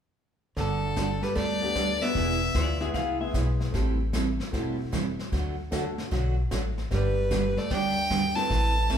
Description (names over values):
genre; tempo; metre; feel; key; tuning
country, western swing; 151 BPM; 4/4; swing 66% on 8ths; G major; A4 = 440 Hz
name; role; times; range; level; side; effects
clear fiddle; melody; 0.6-2.8, 6.9-9.0 s; A4 to A5; -28 LUFS; equal; none
archtop guitar, miked and amplified; second line; 0.6-2.8, 6.9-9.0 s; D3 to E4; -32 LUFS; right 1 dB; none
picked steel-string acoustic guitar; accompaniment; 0.6-9.0 s; D3 to B4; -32 LUFS; right 3 dB; none
upright bass; bass; 0.6-9.0 s; E1 to D2; -29 LUFS; equal; none
jazz brush drum kit; drums; 0.6-9.0 s; brushed snare drum, hi-hat, kick drum, snare drum; -34 LUFS; left 1 dB; none
clear upright piano; accompaniment; 1.6-6.0, 8.4-8.9 s; G#3 to B4; -35 LUFS; left 1 dB; none
clean lap steel guitar; second line; 2.6-3.3 s; F4 to F5; -33 LUFS; left 7 dB; none
room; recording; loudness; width
moderate large studio reverb, RT60 1.4 s; band playing live in one room; -24 LUFS; side -8 dB against mid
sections
0.6-9.0 A section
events
none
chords
0.6 Gadd9; 2.2 E; 3.7 Am7; 5.3 D; 6.9 G